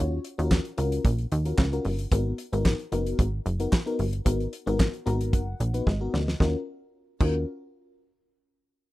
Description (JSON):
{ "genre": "early-eighties boogie funk", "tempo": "112 BPM", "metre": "4/4", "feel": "straight", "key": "Eb minor", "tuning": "A4 = 440 Hz", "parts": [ { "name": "FM electric piano with soft pad layer", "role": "accompaniment", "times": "0.0-7.5 s", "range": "Cb4 to Bb5", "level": "-30 LUFS", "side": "left 3 dB", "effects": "chorus, tremolo, plate reverb" }, { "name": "plucky analog bass", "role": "bass", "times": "0.0-7.5 s", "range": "Gb1 to Eb2", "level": "-27 LUFS", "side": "equal", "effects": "none" }, { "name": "damped 70s drum kit", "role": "drums", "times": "0.2-7.3 s", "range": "crash cymbal, handclaps, hi-hat, kick drum, snare drum", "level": "-25 LUFS", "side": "equal", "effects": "none" } ], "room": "little or no reverb", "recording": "rough home demo mix", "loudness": "-24 LUFS", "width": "side -17 dB against mid", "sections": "0.0-6.4 A section; 6.4-8.5 B section", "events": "FM electric piano fill 4.8-6.4; drum fill 5.9-6.4", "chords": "0.0 Ebm9; 2.1 Abm9; 6.4 Ebm9", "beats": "0.51 1.04 1.58 | 2.12 2.65 3.19 3.72 | 4.26 4.79 5.33 5.87 | 6.40 6.94" }